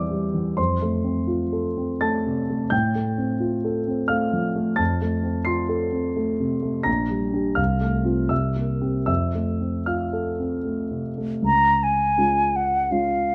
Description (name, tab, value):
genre	classical, romantic duo for flute and grand piano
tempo	73-88 BPM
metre	3/4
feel	rubato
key	F major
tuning	A4 = 440 Hz
part	dark concert grand piano	accompaniment	0.0-13.3 s	Bb1 to C7	-24 LUFS	equal	none
part	mellow silver concert flute	melody	11.5-13.3 s	F5 to Bb5	-21 LUFS	equal	none
room	light reverb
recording	close, detailed microphones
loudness	-23 LUFS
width	mono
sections	0.0-11.4 A section; 11.4-13.3 B section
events	none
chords	0.0 C/E; 0.6 F; 2.7 F/A; 4.8 F; 6.9 Gm/Bb; 7.6 F/C; 8.3 C7; 9.1 F; 11.4 Db